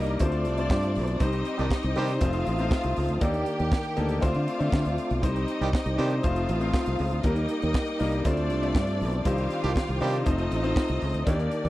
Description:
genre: disco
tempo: 119 BPM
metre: 4/4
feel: straight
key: unclear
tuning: A4 = 441 Hz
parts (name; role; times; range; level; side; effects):
- clear symphonic string section; second line; 0.0-11.7 s; D4 to G5; -33 LUFS; right 1 dB; none
- clear baby grand piano; accompaniment; 0.0-11.7 s; G3 to D5; -30 LUFS; left 3 dB; none
- mellow tonewheel organ; sustained chords; 0.0-11.7 s; Eb3 to Eb6; -34 LUFS; right 1 dB; chorus vibrato, fast rotary speaker
- fingered electric bass; bass; 0.0-11.7 s; F1 to D3; -28 LUFS; equal; none
- tight funk drum kit; drums; 0.1-11.7 s; hi-hat, kick drum, snare drum; -26 LUFS; equal; none
- warm horn section; stabs; 1.6-2.1, 5.6-6.1, 9.6-10.2 s; Eb3 to G4; -30 LUFS; right 4 dB; none
room: little or no reverb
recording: dry, close 1970s-style studio recording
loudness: -24 LUFS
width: side -16 dB against mid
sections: 0.0-11.7 A section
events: none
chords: 0.2 Dm7; 1.2 Cmadd9; 2.2 F7; 3.2 Ebmaj7; 4.2 Dm7; 5.2 Cmadd9; 6.2 F7; 7.2 Ebmaj7; 8.2 Dm7; 9.3 Cmadd9; 10.3 F7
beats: 0.20 0.71 | 1.21 1.71 2.21 2.72 | 3.22 3.72 4.23 4.73 | 5.23 5.73 6.24 6.74 | 7.24 7.74 8.25 8.75 | 9.25 9.76 10.26 10.76 | 11.26

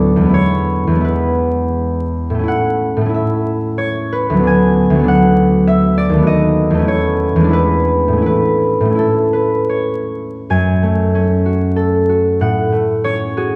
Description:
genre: classical, solo harp piece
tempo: 71-102 BPM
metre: 3/4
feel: rubato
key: A major, F# minor from 10.5 s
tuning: A4 = 439 Hz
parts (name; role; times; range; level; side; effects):
- concert harp; solo; 0.0-13.6 s; D2 to G#5; -15 LUFS; equal; none
room: wet recital hall reverb, RT60 1.7 s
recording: recorded in a church or concert hall, vinyl crackle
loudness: -15 LUFS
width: mono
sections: 0.0-10.5 A section; 10.5-13.6 B section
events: none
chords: 0.3 E; 2.5 A; 4.5 Bm/D; 6.3 B7/D#; 6.9 A/E; 7.5 E7; 8.2 A; 10.5 F#m; 12.4 F#m/A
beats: | 0.34 1.04 1.74 | 2.49 3.15 3.78 | 4.47 5.09 5.68 | 6.28 6.88 7.53 | 8.24 8.97 9.69 | 10.47 11.13 11.76 | 12.38 13.03

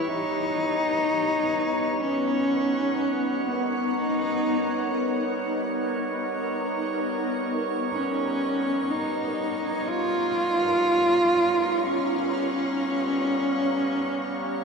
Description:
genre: ambient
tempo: free time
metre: none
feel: none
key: unclear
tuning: A4 = 439 Hz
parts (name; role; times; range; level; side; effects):
- rich cello; melody; 0.0-14.6 s; B3 to E#4; -25 LUFS; equal; tape echo
- shimmering ambient pad; sustained chords; 0.0-14.6 s; B3 to A#5; -29 LUFS; equal; chorus, built-in reverb, phaser
- hand-pumped harmonium; drone; 0.0-14.6 s; G3 to B3; -37 LUFS; left 1 dB; none
- drifting glass-harmonics texture; texture; 0.0-14.6 s; C#5 to C#6; -33 LUFS; right 3 dB; chorus, built-in reverb
room: wet cathedral reverb, RT60 5.7 s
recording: in a vast, echoing space, cassette tape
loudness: -23 LUFS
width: side -4 dB against mid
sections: 0.0-14.6 A section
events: fade-in on ambient pad 0.0-14.6; fade-in on harmonium 0.0-14.6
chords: 0.1 D#7alt/G; 7.9 A#m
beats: free time

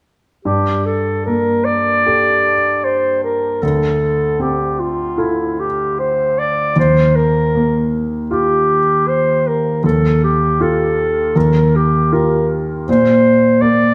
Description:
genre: classical, impressionist duo for clarinet and grand piano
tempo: 78 BPM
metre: 4/4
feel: rubato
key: G minor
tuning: A4 = 442 Hz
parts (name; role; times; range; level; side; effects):
- warm clarinet; melody; 0.5-13.9 s; E4 to D5; -18 LUFS; equal; none
- warm concert grand piano; accompaniment; 0.5-13.9 s; D2 to A4; -19 LUFS; equal; none
room: wet recital hall reverb, RT60 1.7 s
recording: none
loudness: -15 LUFS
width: mono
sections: 0.5-13.9 A section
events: none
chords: 0.5 Gmadd9; 3.6 Dm7; 6.8 Ebadd9; 12.9 Bbadd9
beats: | 0.46 1.26 2.05 2.85 | 3.62 4.40 5.18 5.98 | 6.76 7.54 8.31 9.07 | 9.84 10.60 11.35 12.12 | 12.88 13.61

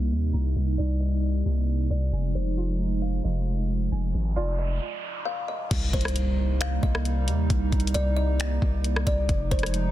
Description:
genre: hip hop, atmospheric cloud-rap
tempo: 134 BPM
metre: 4/4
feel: half-time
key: C minor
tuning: A4 = 443 Hz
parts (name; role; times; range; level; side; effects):
- kalimba; melody; 0.0-9.7 s; C5 to F5; -34 LUFS; left 1 dB; tape echo
- hollow soft pad; sustained chords; 0.0-9.9 s; C3 to Eb4; -31 LUFS; right 2 dB; chorus, sidechain pumping
- string-like resonator pluck; arpeggios; 0.0-5.7 s; C3 to Bb5; -42 LUFS; right 6 dB; chorus, tape echo
- long sustained 808-style bass; bass; 0.0-9.9 s; F1 to Eb2; -25 LUFS; equal; none
- noise sweep and impact; sound effects; 4.2-7.5 s; none; -38 LUFS; equal; none
- smooth R&B drum kit; drums; 5.7-9.8 s; crash cymbal, finger snaps, hi-hat, kick drum, rim click; -27 LUFS; equal; soft clipping on snare
room: digital ambience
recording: dense, heavily limited modern master, low-pass filter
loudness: -23 LUFS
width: side -14 dB against mid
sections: 0.0-5.7 A section; 5.7-9.9 B section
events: filter sweep 0.0-5.7; noise sweep 4.2-5.7; stop 4.8-5.7; impact 5.7-7.5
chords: 0.0 Cm7; 2.1 Fm7; 5.7 Cm7; 9.3 Fm7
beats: | 0.34 0.78 1.23 1.68 | 2.13 2.58 3.02 3.47 | 3.92 4.37 4.81 5.26 | 5.71 6.16 6.61 7.05 | 7.50 7.95 8.40 8.84 | 9.29 9.74

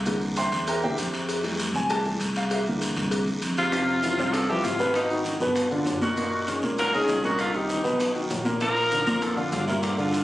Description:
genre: Afro-Cuban jazz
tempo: 197 BPM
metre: 4/4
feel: straight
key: F major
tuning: A4 = 441 Hz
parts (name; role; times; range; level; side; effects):
- upright bass; bass; 0.0-10.2 s; Gb1 to G2; -32 LUFS; equal; none
- warm grand piano; accompaniment; 0.1-10.2 s; Bb2 to C6; -26 LUFS; equal; none
- cowbell and bongos; percussion; 0.1-10.2 s; none; -32 LUFS; left 2 dB; none
- guiro; percussion; 0.1-10.2 s; none; -37 LUFS; right 1 dB; none
- maracas; percussion; 0.1-10.2 s; none; -40 LUFS; right 1 dB; none
- clear tenor saxophone; melody; 3.6-10.2 s; Eb4 to Bb4; -26 LUFS; equal; none
- bright tenor saxophone; second line; 3.6-10.2 s; Cb3 to Gb3; -33 LUFS; right 1 dB; none
room: light reverb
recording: recorded on a phone in the room, studio reverb, compression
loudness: -23 LUFS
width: side -15 dB against mid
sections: 0.0-3.7 A section; 3.7-10.2 B section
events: grand piano solo 0.0-3.7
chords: 0.1 C7; 1.3 Fmaj7; 2.5 C7; 3.7 F5; 4.9 Abm7; 5.6 G7; 6.2 Gb69; 7.4 Cm7; 8.0 B; 8.6 Bb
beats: | 0.06 0.37 0.67 0.98 | 1.28 1.59 1.90 2.20 | 2.50 2.81 3.12 3.42 | 3.73 4.03 4.33 4.64 | 4.95 5.25 5.56 5.86 | 6.17 6.47 6.78 7.08 | 7.39 7.69 8.00 8.30 | 8.61 8.91 9.22 9.52 | 9.83 10.13

